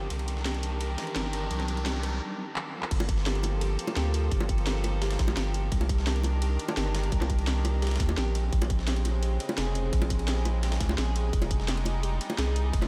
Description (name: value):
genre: liquid drum and bass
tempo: 171 BPM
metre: 4/4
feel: straight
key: G phrygian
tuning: A4 = 442 Hz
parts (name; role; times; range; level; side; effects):
- rich chamber string section; sustained chords; 0.0-12.9 s; Db3 to Bb4; -40 LUFS; equal; sidechain pumping
- saturated sub bass; bass; 0.0-12.9 s; F1 to Eb2; -31 LUFS; equal; none
- riser; sound effects; 0.0-2.2 s; none; -44 LUFS; equal; none
- drum and bass drum kit; drums; 0.1-12.9 s; crash cymbal, handclaps, hi-hat, rim click, snare drum; -38 LUFS; equal; small room ambience
- dusty soul sampler-style drum kit; drums; 0.1-12.9 s; ride cymbal, snare drum; -43 LUFS; equal; high-pass filter on cymbals, small room ambience, high-pass filter on snare, high-pass filter on room
- harp-like synth pluck; arpeggios; 0.5-12.6 s; G4 to Ab4; -41 LUFS; equal; chorus, delay
- electronic kick drum; drums; 2.9-12.8 s; none; -30 LUFS; equal; small room ambience
- bongos; percussion; 3.0-12.9 s; none; -40 LUFS; equal; none
room: light reverb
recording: none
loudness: -28 LUFS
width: mono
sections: 0.0-2.9 A section; 2.9-12.9 B section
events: build-up 0.0-2.9; riser 0.0-2.2; break 2.2-2.9; drum fill 2.6-2.9; drop 2.9-12.9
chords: 0.1 Cm9; 2.7 Fadd11; 2.9 Gm9; 5.7 Cm9; 8.3 Bbm9; 11.3 Fm9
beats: | 0.10 0.46 0.81 1.16 | 1.51 1.86 2.21 2.56 | 2.91 3.26 3.61 3.96 | 4.32 4.67 5.02 5.37 | 5.72 6.07 6.42 6.77 | 7.12 7.47 7.82 8.17 | 8.53 8.88 9.23 9.58 | 9.93 10.28 10.63 10.98 | 11.33 11.68 12.03 12.38 | 12.74